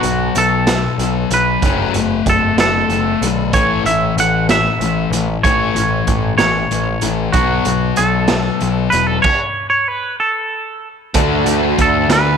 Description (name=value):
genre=indie rock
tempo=63 BPM (dotted quarters)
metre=6/8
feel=straight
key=A major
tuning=A4 = 440 Hz
part: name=twangy electric guitar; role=melody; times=0.0-12.4 s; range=F#4 to F#5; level=-17 LUFS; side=right 2 dB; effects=none
part: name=thick fuzz guitar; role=riff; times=0.0-12.4 s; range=A2 to F#4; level=-18 LUFS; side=left 11 dB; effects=distortion
part: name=growling picked electric bass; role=bass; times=0.0-12.4 s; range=E1 to D2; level=-21 LUFS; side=right 2 dB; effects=overdrive
part: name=raw garage drum kit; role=drums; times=0.0-12.2 s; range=crash cymbal, hi-hat, kick drum, snare drum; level=-20 LUFS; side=right 3 dB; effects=none
part: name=raw garage guitar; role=riff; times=11.1-12.4 s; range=D3 to A4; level=-19 LUFS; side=right 16 dB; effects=overdrive, lush chorus
room=light reverb, small room ambience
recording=1960s-style stereo with parts hard left and right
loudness=-13 LUFS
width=side -7 dB against mid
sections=0.0-11.2 A section; 11.2-12.4 B section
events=stop 9.2-11.2; clean electric guitar solo 11.2-12.4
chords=0.0 B5; 1.6 F#m; 3.5 A; 7.3 B5; 9.2 N.C.; 11.2 D